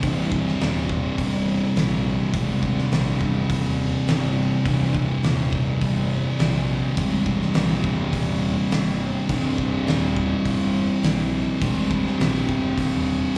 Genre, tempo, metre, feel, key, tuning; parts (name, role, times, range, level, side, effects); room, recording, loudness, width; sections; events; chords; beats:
stoner and doom metal; 104 BPM; 4/4; straight; C minor; A4 = 440 Hz
thick fuzz guitar; riff; 0.0-13.4 s; C2 to C3; -25 LUFS; equal; distortion
fuzz fingered electric bass; bass; 0.0-13.4 s; C1 to Bb1; -30 LUFS; equal; overdrive
oversized low-tuned drum kit; drums; 0.0-13.4 s; hi-hat, kick drum, snare drum; -29 LUFS; equal
little or no reverb; live gig heard through the venue's PA, club reverb, studio ambience; -22 LUFS; mono
0.0-13.4 A section
0.0 Cm
| 0.03 0.60 1.18 1.76 | 2.34 2.92 3.50 4.08 | 4.66 5.24 5.82 6.40 | 6.98 7.56 8.14 8.72 | 9.30 9.88 10.46 11.04 | 11.62 12.20 12.78 13.36